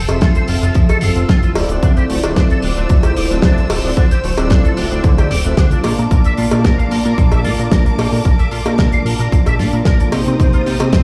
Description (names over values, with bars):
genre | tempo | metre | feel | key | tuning
nu-disco, nu disco | 112 BPM | 4/4 | straight | unclear | A4 = 439 Hz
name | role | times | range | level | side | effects
warm symphonic string section | sustained chords | 0.0-11.0 s | Bb3 to E6 | -30 LUFS | equal | sidechain pumping
fat analog bass | bass | 0.0-11.0 s | D1 to C3 | -20 LUFS | equal | tube saturation, sidechain pumping
mellow synth brass | accompaniment | 0.1-11.0 s | Bb3 to E6 | -23 LUFS | equal | chorus, delay
electric guitar with an envelope filter | riff | 0.1-11.0 s | C3 to F5 | -28 LUFS | equal | ensemble chorus, delay
damped 70s drum kit | drums | 0.1-11.0 s | hi-hat, snare drum | -24 LUFS | equal | studio reverb
cowbell | percussion | 0.1-10.9 s | none | -26 LUFS | equal | none
electronic kick drum | drums | 0.2-11.0 s | none | -16 LUFS | equal | studio reverb
room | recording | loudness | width
light reverb, studio ambience | played on a big sound system in a bare room, large studio reverb | -14 LUFS | mono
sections
0.0-11.0 A section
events
none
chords
0.0 Fmaj7; 1.6 Dm9; 5.8 Bbmaj7; 10.1 Cm7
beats
0.22 0.75 1.29 | 1.82 2.36 2.90 3.43 | 3.97 4.50 5.04 5.58 | 6.11 6.65 7.18 7.72 | 8.25 8.79 9.32 9.86 | 10.40 10.93